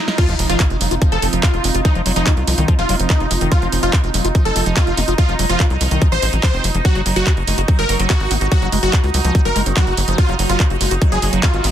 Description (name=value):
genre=psychedelic trance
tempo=144 BPM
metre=4/4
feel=straight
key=unclear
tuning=A4 = 440 Hz
part: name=bubbling stepped-filter texture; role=sustained chords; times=0.0-11.7 s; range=Eb4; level=-27 LUFS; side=right 4 dB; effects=chorus, built-in reverb, sidechain pumping
part: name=riser and sub drop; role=sound effects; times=0.0-1.8 s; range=none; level=-27 LUFS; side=left 1 dB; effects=none
part: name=techno drum kit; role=drums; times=0.1-11.7 s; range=crash cymbal, handclaps, hi-hat, snare drum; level=-22 LUFS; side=right 2 dB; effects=none
part: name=supersaw stab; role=melody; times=0.2-11.6 s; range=Eb4 to C5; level=-22 LUFS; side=equal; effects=phaser, sidechain pumping, dub echo
part: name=liquid acid bass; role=riff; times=0.2-11.7 s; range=Eb3 to Gb4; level=-24 LUFS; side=equal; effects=phaser, auto-pan, sidechain pumping, dub echo
part: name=electronic kick drum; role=drums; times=0.2-11.5 s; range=none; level=-14 LUFS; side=equal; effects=none
part: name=airy breathy pad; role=texture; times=0.2-11.7 s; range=C4 to Db6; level=-28 LUFS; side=right 1 dB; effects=chorus, sidechain pumping
part: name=tight sequencer bass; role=bass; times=0.3-11.7 s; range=F1 to Db2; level=-19 LUFS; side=equal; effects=none
part: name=resonant blip pluck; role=second line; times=8.0-10.1 s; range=C4 to Db4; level=-35 LUFS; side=right 1 dB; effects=none
room=digital ambience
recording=dense, heavily limited modern master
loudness=-14 LUFS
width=side -10 dB against mid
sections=0.2-11.7 A section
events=break 0.0; drum fill 0.0; riser 0.0; drop 0.2-11.7; impact 0.2-1.8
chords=0.2 F5; 6.8 Gb5